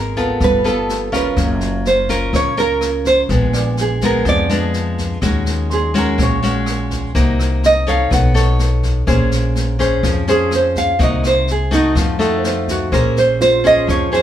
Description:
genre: bossa nova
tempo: 125 BPM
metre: 4/4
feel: straight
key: Bb minor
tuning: A4 = 441 Hz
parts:
  - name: nylon-string guitar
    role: melody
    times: 0.0-14.2 s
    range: Eb4 to F#5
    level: -16 LUFS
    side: right 2 dB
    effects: none
  - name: nylon-string guitar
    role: accompaniment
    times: 0.0-14.2 s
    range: Bb2 to Db5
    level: -19 LUFS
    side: left 2 dB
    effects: none
  - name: upright bass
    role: bass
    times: 0.0-14.2 s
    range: Gb1 to F2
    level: -19 LUFS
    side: equal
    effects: none
  - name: jazz brush drum kit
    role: drums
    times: 0.2-14.2 s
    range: kick drum, rim click, snare drum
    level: -23 LUFS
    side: equal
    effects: none
  - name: warm grand piano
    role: accompaniment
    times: 1.1-7.3, 12.2-14.2 s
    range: F4 to C6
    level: -26 LUFS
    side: right 4 dB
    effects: none
room: moderate studio reverb, RT60 0.7 s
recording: band playing live in one room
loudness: -13 LUFS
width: side -11 dB against mid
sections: 0.0-12.9 A section; 12.9-14.2 B section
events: nylon-string guitar solo 0.0-12.9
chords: 0.4 G9; 1.4 Gbmaj7; 3.3 Bb7b9; 5.2 Ebm7; 7.1 Cm7b5; 8.1 B9; 9.1 Bbm9; 11.0 Cm7b5; 12.0 F7b9; 12.9 Bbm9

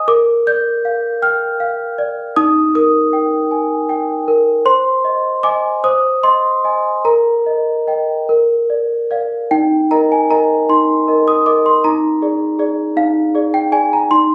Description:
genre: classical, lullaby for celesta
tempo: 48-54 BPM (dotted quarters)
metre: 6/8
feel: rubato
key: Eb major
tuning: A4 = 440 Hz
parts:
  - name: celesta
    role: solo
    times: 0.0-14.3 s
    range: Eb4 to G6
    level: -15 LUFS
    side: equal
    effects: none
room: little or no reverb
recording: recorded on a phone in the room, club reverb, compression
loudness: -15 LUFS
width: mono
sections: 0.0-9.5 A section; 9.5-14.3 B section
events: none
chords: 0.1 Bb; 2.4 Eb; 4.7 Ab/C; 7.1 Eb/Bb; 8.3 Bb; 9.5 Eb5; 11.8 Bb7/Eb

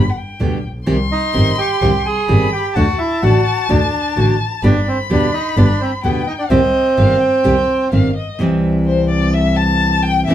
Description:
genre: tango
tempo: 127 BPM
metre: 4/4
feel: rubato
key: C harmonic minor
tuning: A4 = 444 Hz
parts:
  - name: dark violin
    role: second line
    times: 0.0-10.3 s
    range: C5 to C6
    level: -21 LUFS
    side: left 5 dB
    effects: none
  - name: nylon-string guitar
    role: accompaniment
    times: 0.0-10.3 s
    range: B2 to G4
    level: -17 LUFS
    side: equal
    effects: none
  - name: clear double bass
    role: bass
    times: 0.0-10.3 s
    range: G1 to D2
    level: -18 LUFS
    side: equal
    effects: none
  - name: bandoneon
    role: melody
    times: 1.1-7.9 s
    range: B3 to Ab5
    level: -17 LUFS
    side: right 2 dB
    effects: none
room: wet studio reverb, RT60 0.6 s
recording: heard from further back in the room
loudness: -13 LUFS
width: side -11 dB against mid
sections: 0.0-8.4 A section; 8.4-10.3 B section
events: violin solo 8.4-10.3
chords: 0.0 G; 0.9 Cm; 2.8 D; 4.6 G; 6.5 Cm; 8.4 C

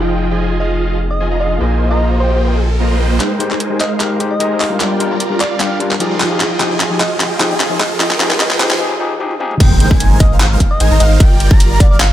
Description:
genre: future bass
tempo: 150 BPM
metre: 4/4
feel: swing 53% on 16ths, half-time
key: unclear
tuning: A4 = 442 Hz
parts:
  - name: overdriven tine electric piano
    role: accompaniment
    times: 0.0-9.5 s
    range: F3 to G5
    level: -20 LUFS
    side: left 3 dB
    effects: sidechain pumping, dub echo
  - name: supersaw chords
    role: riff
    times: 0.0-12.1 s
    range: F3 to C6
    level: -19 LUFS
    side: right 2 dB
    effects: phaser, sidechain pumping, low-pass filter
  - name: saturated sub bass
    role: bass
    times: 0.0-3.2, 9.6-12.1 s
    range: F1 to Bb1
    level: -14 LUFS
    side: equal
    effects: sidechain pumping
  - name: riser and impact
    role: sound effects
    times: 0.7-11.2 s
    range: none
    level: -23 LUFS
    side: equal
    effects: none
  - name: soft struck synth lead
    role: melody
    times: 0.6-12.1 s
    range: C5 to F5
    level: -22 LUFS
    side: equal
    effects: chorus, cassette tape, sidechain pumping, tape echo
  - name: pop drum kit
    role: drums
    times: 3.2-12.1 s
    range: crash cymbal, handclaps, hi-hat, toms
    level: -17 LUFS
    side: equal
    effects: none
  - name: airy dreamy lead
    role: arpeggios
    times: 9.6-12.1 s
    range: F5 to Bb5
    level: -23 LUFS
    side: right 1 dB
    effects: chorus, sidechain pumping
  - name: electronic kick drum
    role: drums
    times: 9.6-11.9 s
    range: none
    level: -11 LUFS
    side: equal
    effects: overdrive
room: light reverb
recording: high-pass filter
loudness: -11 LUFS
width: side -12 dB against mid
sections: 0.0-3.2 A section; 3.2-9.6 B section; 9.6-12.1 C section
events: riser 0.7-3.2, 3.2-8.8; build-up 3.2-9.6; drum fill 3.2-8.8, 9.2-9.6; filter sweep on supersaw synth 3.2-9.6; filter sweep 3.2-9.6; break 8.8-9.6; drop 9.6-12.1; impact 9.6-11.2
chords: 0.0 Fm9; 1.6 Bb7sus4; 3.2 Abmaj7; 4.8 Gm7; 6.2 Fm9; 9.6 Abmaj7; 11.2 Gm7

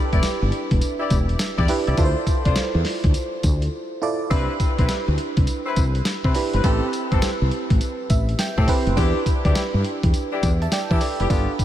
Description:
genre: R&B, new jack swing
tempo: 103 BPM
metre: 4/4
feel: swing 65% on 16ths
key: unclear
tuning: A4 = 440 Hz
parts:
  - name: FM electric piano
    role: accompaniment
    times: 0.0-11.6 s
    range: C4 to C6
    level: -26 LUFS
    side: right 3 dB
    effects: chorus
  - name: mellow horn section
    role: stabs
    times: 0.1-11.5 s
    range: B3 to D5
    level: -28 LUFS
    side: left 4 dB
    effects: analog delay
  - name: woody fretless electric bass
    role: bass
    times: 0.1-11.5 s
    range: E1 to E3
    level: -21 LUFS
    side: equal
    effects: none
  - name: dusty soul sampler-style drum kit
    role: drums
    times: 0.1-11.6 s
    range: hi-hat, kick drum, snare drum, tambourine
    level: -22 LUFS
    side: equal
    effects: none
room: light reverb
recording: none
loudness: -18 LUFS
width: side -12 dB against mid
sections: 0.0-11.6 A section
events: break 3.7-4.3; FM electric piano fill 7.8-9.0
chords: 0.0 Em7; 2.0 Dm7; 4.3 Cmaj7; 6.6 Am7; 9.0 Em7

